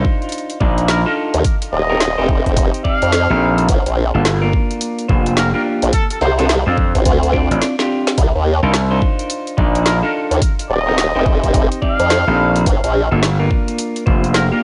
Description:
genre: glitch hop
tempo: 107 BPM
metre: 4/4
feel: swing 63% on 16ths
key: C dorian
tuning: A4 = 440 Hz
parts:
  - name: clean electric guitar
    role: stabs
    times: 0.0-14.6 s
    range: Bb3 to D5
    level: -23 LUFS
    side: equal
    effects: sidechain pumping, cassette tape, tape echo
  - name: gritty slap bass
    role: bass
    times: 0.0-14.5 s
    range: F1 to F2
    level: -18 LUFS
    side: equal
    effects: overdrive
  - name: electronic kick drum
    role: drums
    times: 0.0-14.2 s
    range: none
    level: -19 LUFS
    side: equal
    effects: overdrive, studio reverb, cassette tape
  - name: drum and bass drum kit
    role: drums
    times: 0.2-14.5 s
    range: hi-hat, snare drum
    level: -24 LUFS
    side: equal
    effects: overdrive, studio reverb, cassette tape
  - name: clear trumpet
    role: melody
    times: 0.9-6.5, 9.9-14.6 s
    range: A4 to F5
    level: -25 LUFS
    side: equal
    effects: cassette tape, tape echo
  - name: formant-sweep wobble bass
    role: bass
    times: 1.3-13.1 s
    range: Eb1 to F2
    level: -17 LUFS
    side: equal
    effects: chorus, tube saturation
room: light reverb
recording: home recording on cassette, nothing above 10.9 kHz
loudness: -16 LUFS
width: mono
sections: 0.0-14.6 A section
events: drum fill 7.6-8.2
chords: 0.0 Cm11; 1.4 F9sus4; 3.7 Gm7; 5.9 Dm7; 8.2 Cm11; 10.4 F9sus4; 12.7 Gm7

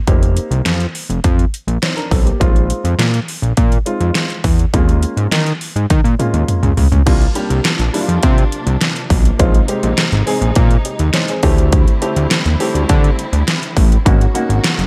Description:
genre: early-eighties boogie funk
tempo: 103 BPM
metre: 4/4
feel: straight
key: C minor from 7.1 s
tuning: A4 = 439 Hz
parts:
  - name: dark baby grand piano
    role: accompaniment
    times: 0.1-14.7 s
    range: G3 to Eb5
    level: -23 LUFS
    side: equal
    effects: slapback echo
  - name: fat analog bass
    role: bass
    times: 0.1-14.9 s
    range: F1 to Eb3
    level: -17 LUFS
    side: equal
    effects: none
  - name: dubstep drum kit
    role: drums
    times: 0.1-14.9 s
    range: crash cymbal, handclaps, hi-hat, kick drum, snare drum, toms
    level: -17 LUFS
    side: equal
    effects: none
  - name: warm studio string section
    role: sustained chords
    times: 7.1-14.9 s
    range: C3 to Gb4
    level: -28 LUFS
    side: equal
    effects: none
room: light reverb, digital ambience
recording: none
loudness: -15 LUFS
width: mono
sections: 0.0-7.1 A section; 7.1-14.9 B section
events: drum fill 5.9-7.1; grand piano fill 14.6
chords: 0.1 F9sus4; 2.4 Bb9sus4; 4.7 Eb9sus4; 7.1 C9sus4; 9.4 Bb9sus4; 11.4 D9sus4; 14.1 Ab9sus4

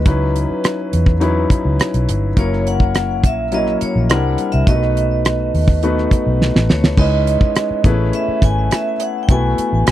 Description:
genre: lush 1970s-style soul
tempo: 104 BPM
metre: 4/4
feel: straight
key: unclear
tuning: A4 = 441 Hz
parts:
  - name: vibraphone with hard mallets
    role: melody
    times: 0.0-9.9 s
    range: B4 to G#5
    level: -22 LUFS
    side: right 3 dB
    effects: tape echo
  - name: clear grand piano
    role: accompaniment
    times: 0.0-9.9 s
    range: F#3 to B4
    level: -20 LUFS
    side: left 4 dB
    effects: none
  - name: vintage muted fingered electric bass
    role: bass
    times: 0.0-9.9 s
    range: F#1 to E2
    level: -18 LUFS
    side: equal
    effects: none
  - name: damped 70s drum kit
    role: drums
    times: 0.1-9.9 s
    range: crash cymbal, hi-hat, kick drum, rim click, snare drum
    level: -15 LUFS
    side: equal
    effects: none
room: little or no reverb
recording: dry, close 1970s-style studio recording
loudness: -14 LUFS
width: side -13 dB against mid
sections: 0.0-7.0 A section; 7.0-9.9 B section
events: drum fill 6.4-7.0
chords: 0.1 C#m11; 2.4 F#7; 4.1 C9; 4.7 B7; 7.0 C#m9; 7.8 Amaj9; 9.3 B7sus4

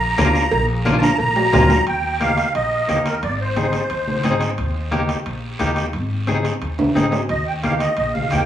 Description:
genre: latin, cumbia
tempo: 177 BPM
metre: 4/4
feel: straight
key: Eb major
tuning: A4 = 440 Hz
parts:
  - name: musette accordion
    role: melody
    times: 0.0-4.4, 7.3-8.5 s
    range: Bb4 to Bb5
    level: -21 LUFS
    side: right 2 dB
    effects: tape echo
  - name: upright bass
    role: bass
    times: 0.0-8.5 s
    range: Ab1 to Eb2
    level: -24 LUFS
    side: equal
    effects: none
  - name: clean electric guitar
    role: accompaniment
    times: 0.2-8.5 s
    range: Bb3 to Ab4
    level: -24 LUFS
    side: left 3 dB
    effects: tremolo
  - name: congas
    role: percussion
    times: 0.2-8.5 s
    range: none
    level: -23 LUFS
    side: left 1 dB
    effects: none
  - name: cowbell and timbales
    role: percussion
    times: 0.2-8.5 s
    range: none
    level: -25 LUFS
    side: right 2 dB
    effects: none
  - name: guiro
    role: percussion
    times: 0.2-8.5 s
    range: none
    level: -33 LUFS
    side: right 5 dB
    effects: none
room: light reverb, studio ambience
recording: rough home demo mix, small room ambience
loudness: -17 LUFS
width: side -10 dB against mid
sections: 0.0-1.9 A section; 1.9-8.5 B section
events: accordion solo 0.0-1.9; drum fill 1.0-1.9, 6.8-7.3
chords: 0.0 Bb; 1.9 Eb; 3.2 Ab; 4.6 Eb; 5.9 Ab; 7.3 Eb

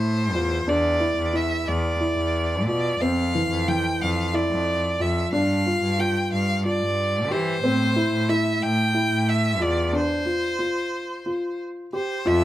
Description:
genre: contemporary instrumental, chamber music in an uneven meter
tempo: 182 BPM (eighths)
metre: 7/8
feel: straight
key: F major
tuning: A4 = 439 Hz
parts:
  - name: clear violin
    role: melody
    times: 0.0-12.4 s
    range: C5 to G5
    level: -25 LUFS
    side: right 1 dB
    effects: none
  - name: dark baby grand piano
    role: arpeggios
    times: 0.0-12.4 s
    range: E3 to G4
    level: -25 LUFS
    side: equal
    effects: none
  - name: rich cello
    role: bass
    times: 0.0-12.4 s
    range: E2 to E3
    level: -25 LUFS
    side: equal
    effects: none
room: light reverb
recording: close, detailed microphones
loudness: -21 LUFS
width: side -14 dB against mid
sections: 0.0-12.3 A section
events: break 9.9-12.3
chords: 0.0 Am; 0.7 E5; 3.0 F5; 5.3 G5; 7.6 Am7; 9.9 F5

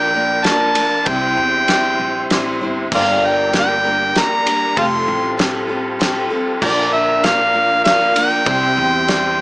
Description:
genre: folk rock and heartland rock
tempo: 97 BPM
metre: 3/4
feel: straight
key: unclear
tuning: A4 = 439 Hz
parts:
  - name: overdriven harmonica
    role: melody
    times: 0.0-9.4 s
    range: G4 to C6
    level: -15 LUFS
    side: equal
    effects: none
  - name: picked steel-string acoustic guitar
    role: accompaniment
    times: 0.0-9.4 s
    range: G2 to C5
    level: -21 LUFS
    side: left 1 dB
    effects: none
  - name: tonewheel organ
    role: sustained chords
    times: 0.0-9.4 s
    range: F3 to C5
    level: -24 LUFS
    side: equal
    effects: chorus vibrato
  - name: upright bass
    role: bass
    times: 0.0-9.4 s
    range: F1 to E2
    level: -29 LUFS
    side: equal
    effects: none
  - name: loose indie drum kit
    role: drums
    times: 0.4-9.2 s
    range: crash cymbal, kick drum, ride cymbal, snare drum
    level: -20 LUFS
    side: equal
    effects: none
room: moderate studio reverb, RT60 0.8 s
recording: small speaker sound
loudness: -13 LUFS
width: side -23 dB against mid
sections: 0.0-9.4 A section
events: none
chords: 0.0 Bb; 1.1 C; 2.9 Gm; 4.8 Fadd9; 6.6 Bb; 8.5 C

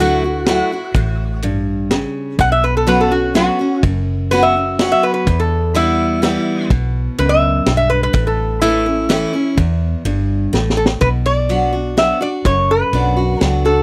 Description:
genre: honky-tonk and classic country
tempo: 125 BPM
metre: 3/4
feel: straight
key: B minor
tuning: A4 = 440 Hz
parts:
  - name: lap resonator guitar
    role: melody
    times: 0.0-13.8 s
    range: E4 to F#5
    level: -19 LUFS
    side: equal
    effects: none
  - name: picked steel-string acoustic guitar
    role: accompaniment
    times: 0.0-13.8 s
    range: E2 to F#4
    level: -21 LUFS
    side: equal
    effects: none
  - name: vintage muted fingered electric bass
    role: bass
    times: 0.0-13.8 s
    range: F#1 to E2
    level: -21 LUFS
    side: equal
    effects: none
  - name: vintage drum kit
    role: drums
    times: 0.5-13.5 s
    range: kick drum, ride cymbal, snare drum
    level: -21 LUFS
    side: equal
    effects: none
room: little or no reverb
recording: dry, close 1970s-style studio recording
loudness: -16 LUFS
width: mono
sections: 0.0-11.0 A section; 11.0-13.8 B section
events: resonator guitar played with a steel bar solo 0.0-11.0; drum fill 10.5-11.0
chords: 0.0 Dadd9; 2.4 Bsus2; 5.3 Em; 8.1 A; 11.0 Bm

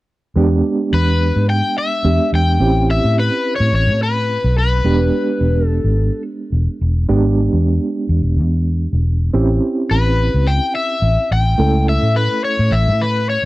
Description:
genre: straight-eighth soul blues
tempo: 107 BPM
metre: 4/4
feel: swing 55% on 16ths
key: unclear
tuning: A4 = 440 Hz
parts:
  - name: reed electric piano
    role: accompaniment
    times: 0.4-13.5 s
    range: G#3 to A4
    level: -20 LUFS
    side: right 3 dB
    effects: fast tremolo
  - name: vintage muted fingered electric bass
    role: bass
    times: 0.4-13.4 s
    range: E1 to A2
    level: -15 LUFS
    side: equal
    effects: none
  - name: overdriven semi-hollow guitar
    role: melody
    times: 0.9-6.2, 9.9-13.5 s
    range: B4 to G5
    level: -19 LUFS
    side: left 3 dB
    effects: none
room: little or no reverb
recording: dry, close 1970s-style studio recording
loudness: -14 LUFS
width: side -18 dB against mid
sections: 0.4-13.5 A section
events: none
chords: 0.4 E7#9; 2.6 A7#9; 4.9 E7#9; 9.3 A7#9

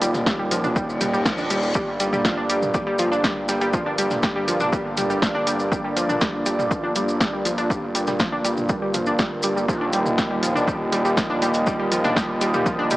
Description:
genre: melodic techno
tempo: 121 BPM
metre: 4/4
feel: straight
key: G minor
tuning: A4 = 442 Hz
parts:
  - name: dark analog pad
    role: sustained chords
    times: 0.0-13.0 s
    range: Bb3 to Eb5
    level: -26 LUFS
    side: right 1 dB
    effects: chorus, sidechain pumping
  - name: analog pluck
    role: arpeggios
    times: 0.0-13.0 s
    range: F3 to D5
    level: -24 LUFS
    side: equal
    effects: chorus, sidechain pumping, dub echo
  - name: gritty driven synth bass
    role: bass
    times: 0.0-13.0 s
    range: Eb1 to G1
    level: -28 LUFS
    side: equal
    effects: sidechain pumping
  - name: punchy analog drum machine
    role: drums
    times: 0.0-13.0 s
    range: hi-hat, snare drum, toms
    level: -26 LUFS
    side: equal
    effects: sidechain pumping on hats, sidechain pumping on toms
  - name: maracas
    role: percussion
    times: 0.0-13.0 s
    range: none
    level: -33 LUFS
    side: equal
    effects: none
  - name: electronic kick drum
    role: drums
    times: 0.3-12.8 s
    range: none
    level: -26 LUFS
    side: equal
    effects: overdrive
  - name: reverse cymbal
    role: sound effects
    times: 0.9-1.8 s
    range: none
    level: -33 LUFS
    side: left 3 dB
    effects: none
room: moderate lush hall reverb, RT60 2.1 s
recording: small speaker sound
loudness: -19 LUFS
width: side -18 dB against mid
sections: 0.0-13.0 A section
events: reverse cymbal 0.9-1.8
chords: 0.0 Ebsus2; 1.8 Gm; 9.7 Ebsus2

